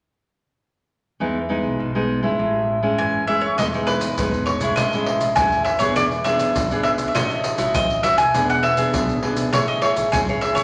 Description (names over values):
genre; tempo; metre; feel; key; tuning
samba and choro; 101 BPM; 4/4; straight; E major; A4 = 445 Hz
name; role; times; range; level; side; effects
nylon-string guitar; accompaniment; 1.2-10.6 s; A2 to C#5; -24 LUFS; equal; none
upright bass; bass; 1.2-10.6 s; E1 to E2; -35 LUFS; equal; none
bowl-back mandolin; melody; 3.0-10.6 s; B4 to G#5; -23 LUFS; equal; none
maracas, surdo and pandeiro; percussion; 3.6-10.6 s; none; -27 LUFS; equal; none
room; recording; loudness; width
wet large studio reverb, RT60 1.4 s; none; -20 LUFS; mono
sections
1.2-3.6 A section; 3.6-10.6 B section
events
none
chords
1.2 Emaj7; 2.4 Amaj7; 3.6 Emaj7; 4.8 Amaj7; 6.0 E7; 7.2 A6; 8.3 E7; 9.5 Amaj7